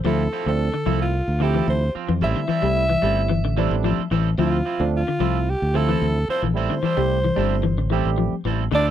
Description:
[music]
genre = afrobeat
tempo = 111 BPM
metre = 4/4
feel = swing 53% on 16ths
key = D minor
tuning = A4 = 440 Hz
[part]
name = fingered electric bass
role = bass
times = 0.0-8.9 s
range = G1 to F2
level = -22 LUFS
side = equal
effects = none
[part]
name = raspy alto saxophone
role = melody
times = 0.1-8.9 s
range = F4 to E5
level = -25 LUFS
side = equal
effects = tape echo
[part]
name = barky tine electric piano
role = accompaniment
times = 0.1-8.3 s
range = F3 to G4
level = -27 LUFS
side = moving between right 6 dB and right 15 dB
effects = overdrive, auto-pan
[part]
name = semi-hollow electric guitar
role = arpeggios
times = 0.1-8.9 s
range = D3 to G3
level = -25 LUFS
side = left 8 dB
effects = none
[part]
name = electric guitar at the edge of break-up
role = stabs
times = 0.1-8.9 s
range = F3 to A4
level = -29 LUFS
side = right 11 dB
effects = none
[part]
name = clear trombone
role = second line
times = 8.8-8.9 s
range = D4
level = -23 LUFS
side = right 5 dB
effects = none
[sound]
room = light reverb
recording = dry, close 1970s-style studio recording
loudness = -19 LUFS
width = side -10 dB against mid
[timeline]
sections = 0.0-8.7 A section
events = none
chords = 0.1 Dm9; 2.2 Am7; 4.4 Dm9; 6.6 Am7

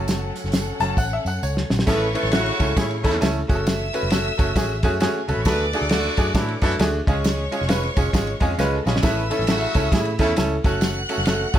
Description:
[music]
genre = uptempo 1960s-style soul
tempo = 134 BPM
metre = 4/4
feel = swing 61% on 8ths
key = F# minor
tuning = A4 = 440 Hz
[part]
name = rich studio violin section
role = second line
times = 0.0-11.6 s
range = C#4 to F#6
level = -29 LUFS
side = equal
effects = slapback echo
[part]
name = bright upright piano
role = accompaniment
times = 0.0-11.6 s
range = F#3 to A5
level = -24 LUFS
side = right 1 dB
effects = none
[part]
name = vintage muted fingered electric bass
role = bass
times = 0.0-11.6 s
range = E#1 to A2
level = -26 LUFS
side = equal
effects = none
[part]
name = warm soul drum kit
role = drums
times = 0.1-11.6 s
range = crash cymbal, hi-hat, kick drum, ride cymbal, snare drum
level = -22 LUFS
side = equal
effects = none
[part]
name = tambourine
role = percussion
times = 0.1-11.6 s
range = none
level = -38 LUFS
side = right 5 dB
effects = none
[part]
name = clear horn section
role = second line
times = 1.9-10.3 s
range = C#3 to B4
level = -28 LUFS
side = left 1 dB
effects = none
[sound]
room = moderate studio reverb, RT60 0.5 s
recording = none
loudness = -19 LUFS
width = side -11 dB against mid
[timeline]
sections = 0.0-1.9 A section; 1.9-11.6 B section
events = upright piano solo 0.0-1.9; drum fill 1.0-1.9, 8.6-9.0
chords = 0.0 F#m; 1.9 A; 3.4 F#m; 5.5 D; 7.0 C#; 9.0 A; 10.6 F#m

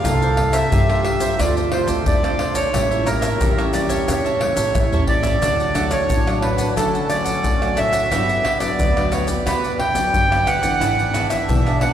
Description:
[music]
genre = samba and choro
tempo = 89 BPM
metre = 4/4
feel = straight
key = D major from 5.4 s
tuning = A4 = 440 Hz
[part]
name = accordion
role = melody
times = 0.0-11.9 s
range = A4 to G5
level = -20 LUFS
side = right 2 dB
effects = none
[part]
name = warm trombone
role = second line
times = 0.0-11.9 s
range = B3 to A4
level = -26 LUFS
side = right 2 dB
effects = none
[part]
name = cavaquinho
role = accompaniment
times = 0.0-11.9 s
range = D4 to F#5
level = -29 LUFS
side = right 3 dB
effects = none
[part]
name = nylon-string guitar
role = accompaniment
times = 0.0-11.9 s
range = G2 to F4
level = -26 LUFS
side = left 2 dB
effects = none
[part]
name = upright bass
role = bass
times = 0.0-11.9 s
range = G1 to G2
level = -24 LUFS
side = equal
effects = none
[part]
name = maracas, surdo, pandeiro and tamborim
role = percussion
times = 0.0-11.9 s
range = none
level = -22 LUFS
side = left 1 dB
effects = none
[sound]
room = wet cathedral reverb, RT60 5.7 s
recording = recorded in a church or concert hall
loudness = -16 LUFS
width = side -10 dB against mid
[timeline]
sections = 0.0-5.4 A section; 5.4-11.9 B section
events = drum fill 4.8-5.4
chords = 0.0 C7sus4; 1.4 Dm7; 2.7 A7b9; 5.4 D; 8.1 Gmaj7; 10.8 E7/G#

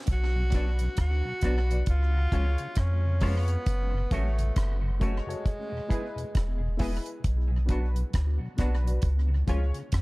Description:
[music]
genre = roots reggae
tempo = 67 BPM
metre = 4/4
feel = swing 61% on 16ths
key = unclear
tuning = A4 = 440 Hz
[part]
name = breathy tenor saxophone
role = melody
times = 0.1-6.8 s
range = G#3 to F#4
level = -36 LUFS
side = equal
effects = tape echo
[part]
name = soft dub sub bass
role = bass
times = 0.1-10.0 s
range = E1 to E#2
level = -26 LUFS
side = equal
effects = none
[part]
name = deep reggae drum kit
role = drums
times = 0.1-10.0 s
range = hi-hat, kick drum, rim click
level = -29 LUFS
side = equal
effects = tape echo
[part]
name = mellow tonewheel organ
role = accompaniment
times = 0.4-9.8 s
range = E2 to G#4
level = -38 LUFS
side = left 1 dB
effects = slow rotary speaker, tape echo
[part]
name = electric guitar with an envelope filter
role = accompaniment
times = 0.5-9.6 s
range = E#3 to G#4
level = -40 LUFS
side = right 2 dB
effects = tape echo
[part]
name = warm upright piano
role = stabs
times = 0.5-9.8 s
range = D4 to D5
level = -40 LUFS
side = left 2 dB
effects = none
[sound]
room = studio reverb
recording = echo-heavy mix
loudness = -25 LUFS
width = side -23 dB against mid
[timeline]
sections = 0.1-10.0 A section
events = none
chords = 0.1 Bm; 1.9 C#; 3.7 F#m; 5.5 E; 7.2 Bm; 9.0 C#

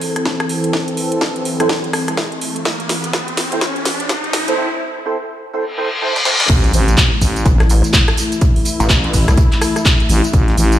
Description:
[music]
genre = bass house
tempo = 125 BPM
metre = 4/4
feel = swing 61% on 16ths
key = A minor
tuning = A4 = 439 Hz
[part]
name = sweeping resonant pad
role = sustained chords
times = 0.0-10.8 s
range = E3 to A4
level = -21 LUFS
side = left 1 dB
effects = chorus, sidechain pumping
[part]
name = house drum kit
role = drums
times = 0.0-10.8 s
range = crash cymbal, handclaps, hi-hat, rim click, snare drum, tambourine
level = -19 LUFS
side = equal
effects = high-pass filter on hats, high-pass filter on snare, high-pass filter on cymbals, high-pass filter on perc
[part]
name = riser, reverse cymbal and impact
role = sound effects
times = 0.9-8.4 s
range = none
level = -22 LUFS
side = left 1 dB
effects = none
[part]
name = electronic kick drum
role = drums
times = 0.3-10.5 s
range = none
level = -15 LUFS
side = equal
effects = high-pass filter on kick
[part]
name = percussive organ stab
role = stabs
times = 1.6-6.4 s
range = C4 to C5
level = -22 LUFS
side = right 3 dB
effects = ensemble chorus, sidechain pumping, digital delay
[part]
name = growling FM bass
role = bass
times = 6.5-10.8 s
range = A1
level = -14 LUFS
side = equal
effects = overdrive, sidechain pumping
[part]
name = modern studio drum kit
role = drums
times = 6.5-10.7 s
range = hi-hat, snare drum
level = -31 LUFS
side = right 2 dB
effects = none
[part]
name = pulsing pluck wobble bass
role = bass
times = 7.5-9.4 s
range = A1 to C2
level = -13 LUFS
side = equal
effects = distortion, chorus, overdrive, sidechain pumping
[sound]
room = light reverb, digital ambience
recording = played on a big sound system in a bare room, stone room reverb, high-pass filter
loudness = -13 LUFS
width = side -12 dB against mid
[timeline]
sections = 0.0-6.5 A section; 6.5-10.8 B section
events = build-up 0.0-6.5; drum fill 0.0-4.6, 6.1-6.5; filter sweep on synth stab 0.0-6.5; filter sweep 0.0-6.5; riser 0.9-4.6; reverse cymbal 5.7-6.5; drop 6.5-10.8; impact 6.5-8.4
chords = 0.0 Am; 6.5 A5

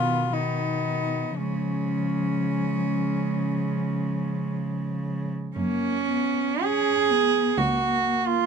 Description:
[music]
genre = classical, lyrical piece for cello ensemble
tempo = 56-65 BPM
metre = 4/4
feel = rubato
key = F# major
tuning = A4 = 442 Hz
[part]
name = clear cello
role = melody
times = 0.0-7.4 s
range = C#4 to F#5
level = -30 LUFS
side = left 6 dB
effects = none
[part]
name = rich cello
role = second line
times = 0.0-8.5 s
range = G#3 to G#4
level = -26 LUFS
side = right 8 dB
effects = none
[part]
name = dark cello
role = accompaniment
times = 0.0-8.5 s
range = D#3 to C#4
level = -29 LUFS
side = left 4 dB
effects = none
[part]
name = dark cello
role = bass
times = 0.0-8.3 s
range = C#2 to C#3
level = -30 LUFS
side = right 2 dB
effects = none
[sound]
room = little or no reverb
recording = close, detailed microphones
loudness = -23 LUFS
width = side -6 dB against mid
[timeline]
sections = 0.0-5.6 A section; 5.6-8.5 B section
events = none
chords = 0.0 B; 1.4 C#; 5.6 F#

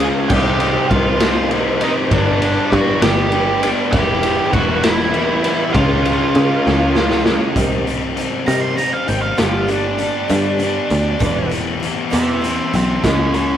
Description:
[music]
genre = quiet-loud alternative rock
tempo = 66 BPM (dotted quarters)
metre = 6/8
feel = straight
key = unclear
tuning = A4 = 440 Hz
[part]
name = octave-fuzz lead guitar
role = melody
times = 0.0-13.6 s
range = D4 to C6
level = -21 LUFS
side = right 2 dB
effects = distortion
[part]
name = mellow tonewheel organ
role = sustained chords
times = 0.0-7.6 s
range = G3 to Db6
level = -29 LUFS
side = right 1 dB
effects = none
[part]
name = sludgy distorted guitar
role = riff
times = 0.0-13.6 s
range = G2 to F4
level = -20 LUFS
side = left 4 dB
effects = overdrive
[part]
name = sludgy distorted guitar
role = riff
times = 0.0-7.6 s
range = G2 to F4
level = -23 LUFS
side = right 6 dB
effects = overdrive
[part]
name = picked electric bass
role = bass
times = 0.0-13.6 s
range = E1 to Db3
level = -20 LUFS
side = equal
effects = none
[part]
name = raw garage drum kit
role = drums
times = 0.0-13.5 s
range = crash cymbal, hi-hat, kick drum, ride cymbal, snare drum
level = -20 LUFS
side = equal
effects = none
[part]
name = fingerpicked steel-string acoustic guitar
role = arpeggios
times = 7.6-13.6 s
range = E2 to Ab3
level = -25 LUFS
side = right 2 dB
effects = none
[sound]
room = moderate small room reverb, RT60 0.6 s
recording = rough rehearsal-room recording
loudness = -14 LUFS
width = side -10 dB against mid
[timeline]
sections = 0.0-7.6 A section; 7.6-13.6 B section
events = drum fill 6.7-7.6; half time 7.6-13.6; lead electric guitar solo 7.6-13.6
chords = 0.3 Cm; 2.1 G; 3.9 Em; 5.8 Db; 7.6 Cm; 9.4 G; 11.2 Em; 13.0 Db

